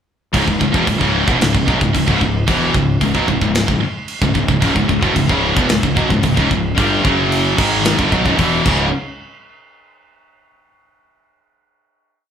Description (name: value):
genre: heavy metal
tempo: 112 BPM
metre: 4/4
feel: straight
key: C# minor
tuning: A4 = 440 Hz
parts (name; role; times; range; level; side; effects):
- distorted electric guitar; riff; 0.3-8.9 s; C#2 to G#3; -24 LUFS; left 1 dB; none
- high-gain distorted guitar; riff; 0.3-8.9 s; C#2 to G#3; -19 LUFS; right 6 dB; distortion
- scooped high-gain guitar; riff; 0.3-8.9 s; C#2 to G#3; -19 LUFS; left 5 dB; distortion
- fuzz fingered electric bass; bass; 0.3-8.9 s; C#1 to B1; -23 LUFS; equal; overdrive
- tight metal drum kit; drums; 0.3-8.8 s; crash cymbal, kick drum, snare drum; -19 LUFS; equal; none
room: wet large studio reverb, RT60 0.8 s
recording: band playing live in one room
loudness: -13 LUFS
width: side -8 dB against mid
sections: 0.3-8.9 riff; 8.9-11.1 final hit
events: none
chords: 0.3 C#m; 7.0 F#5; 7.6 C#m; 8.7 C#5; 8.9 N.C.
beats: | 0.34 0.87 1.40 1.94 | 2.47 3.01 3.54 4.08 | 4.62 5.16 5.69 6.23 | 6.77 7.31 7.85 8.38